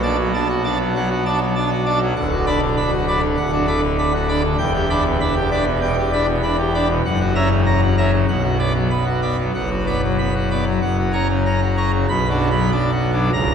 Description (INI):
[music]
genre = classical, organ toccata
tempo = 98 BPM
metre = 4/4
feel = straight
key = B minor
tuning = A4 = 440 Hz
[part]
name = pipe organ, full organ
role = solo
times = 0.0-13.5 s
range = C#1 to B5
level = -16 LUFS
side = equal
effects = none
[sound]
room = wet cathedral reverb, RT60 5.0 s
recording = recorded in a church or concert hall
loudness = -16 LUFS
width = side -7 dB against mid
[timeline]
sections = 0.0-12.1 A section; 12.1-13.5 B section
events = none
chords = 0.0 Bm7; 2.2 Bm/D; 4.6 Em7; 7.0 F#7; 8.3 Bm; 9.5 Bm/F#; 10.8 F#; 12.1 Bm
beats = 0.34 0.95 1.55 | 2.16 2.77 3.38 3.98 | 4.59 5.20 5.81 6.43 | 7.04 7.66 8.28 8.90 | 9.54 10.19 10.82 11.46 | 12.09 12.71 13.34